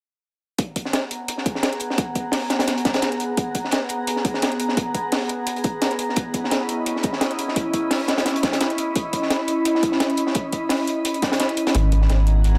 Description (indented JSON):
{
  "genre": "liquid drum and bass",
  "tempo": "172 BPM",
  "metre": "4/4",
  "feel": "swing 54% on 16ths",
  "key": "G# minor",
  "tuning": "A4 = 440 Hz",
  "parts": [
    { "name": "glassy FM pad", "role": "sustained chords", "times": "0.6-12.6 s", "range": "B3 to B5", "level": "-26 LUFS", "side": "equal", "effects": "ensemble chorus, built-in reverb" },
    { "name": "crunchy breakbeat drum kit", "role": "drums", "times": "0.6-12.6 s", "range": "hi-hat, snare drum", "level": "-26 LUFS", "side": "equal", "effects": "high-pass filter on hats, high-pass filter on snare, high-pass filter on room" },
    { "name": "electronic hi-hat", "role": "drums", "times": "0.6-12.5 s", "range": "none", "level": "-33 LUFS", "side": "equal", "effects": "overdrive" },
    { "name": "electronic kick drum", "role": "drums", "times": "0.6-12.0 s", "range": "none", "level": "-28 LUFS", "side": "equal", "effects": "overdrive, high-pass filter on kick, high-pass filter on room" },
    { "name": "warm sub bass", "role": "bass", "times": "11.7-12.6 s", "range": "G#1", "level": "-18 LUFS", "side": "equal", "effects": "none" }
  ],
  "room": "light reverb",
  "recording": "none",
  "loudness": "-22 LUFS",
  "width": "mono",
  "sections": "0.6-12.6 A section",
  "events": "filter sweep on ambient pad 0.6-12.6",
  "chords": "0.6 G#m9; 6.2 C#m9; 11.7 G#m9",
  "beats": "| 0.59 0.93 1.28 1.63 | 1.98 2.33 2.68 3.03 | 3.38 3.73 4.07 4.42 | 4.77 5.12 5.47 5.82 | 6.17 6.52 6.87 7.21 | 7.56 7.91 8.26 8.61 | 8.96 9.31 9.65 10.00 | 10.35 10.70 11.05 11.40 | 11.75 12.10 12.45"
}